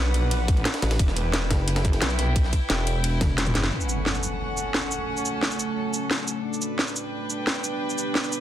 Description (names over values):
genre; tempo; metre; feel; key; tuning
dark technical drum and bass; 176 BPM; 4/4; straight; F# phrygian; A4 = 440 Hz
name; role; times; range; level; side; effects
snarling distorted saw bass; bass; 0.0-2.5 s; E1 to B1; -24 LUFS; equal; distortion, overdrive, sidechain pumping
rich chamber string section; texture; 0.0-8.4 s; C#4 to G5; -30 LUFS; equal; sidechain pumping
breakbeat sampler-style drum kit; drums; 0.1-3.7 s; ride cymbal, snare drum; -33 LUFS; right 1 dB; high-pass filter on cymbals, high-pass filter on snare, high-pass filter on hats, high-pass filter on room
drum and bass drum kit; drums; 0.1-8.4 s; hi-hat, shaker, snare drum, toms; -26 LUFS; equal; none
electronic kick drum; drums; 0.5-3.3 s; none; -22 LUFS; equal; none
pulsing pluck wobble bass; bass; 0.8-3.7 s; E1 to A1; -24 LUFS; equal; chorus, tube saturation
deep dark ambient pad; sustained chords; 4.7-8.4 s; A3 to D5; -32 LUFS; right 1 dB; chorus, built-in reverb, sidechain pumping
impact; sound effects; 3.7-5.1 s; none; -32 LUFS; equal; none
room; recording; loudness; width
light reverb; dense, heavily limited modern master; -22 LUFS; side -11 dB against mid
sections
0.0-3.7 A section; 3.7-8.4 B section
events
drum fill 3.2-3.7; band accent 3.6; impact 3.7-5.1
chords
0.0 Bm; 1.0 Em; 3.7 F#m; 6.4 G